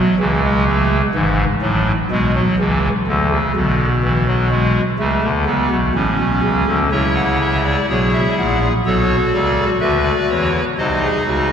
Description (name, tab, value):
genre	classical, baroque-style 4-part fugue for pipe organ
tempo	62 BPM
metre	4/4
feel	straight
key	unclear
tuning	A4 = 436 Hz
part	pipe organ, clarinet reed	solo	0.0-11.5 s	G#1 to F#5	-14 LUFS	equal	none
room	wet cathedral reverb, RT60 4.8 s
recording	heard from further back in the room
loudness	-14 LUFS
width	side -8 dB against mid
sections	0.0-6.9 A section; 6.9-11.5 B section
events	none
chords	0.0 A; 1.1 E/G#; 3.1 E7 (rootless); 5.0 A; 6.9 F#7/C#; 8.9 Bm; 10.8 G#7/B#